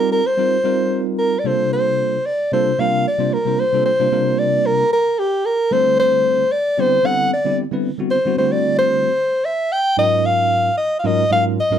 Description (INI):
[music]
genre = jazz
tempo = 112 BPM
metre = 4/4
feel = swing 54% on 16ths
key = unclear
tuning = A4 = 440 Hz
[part]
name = mellow soprano saxophone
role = melody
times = 0.0-11.8 s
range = G4 to G5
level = -16 LUFS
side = equal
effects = none
[part]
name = bell-like tine electric piano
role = accompaniment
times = 0.0-11.8 s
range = Ab2 to C5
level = -20 LUFS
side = equal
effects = medium stereo tremolo
[sound]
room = moderate club reverb, RT60 0.7 s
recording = none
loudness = -15 LUFS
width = side -9 dB against mid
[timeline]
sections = 0.0-1.4 A section; 1.4-11.8 B section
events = none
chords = 0.0 F9sus4; 1.4 C13sus4; 5.7 D13sus4; 10.0 Ab13sus4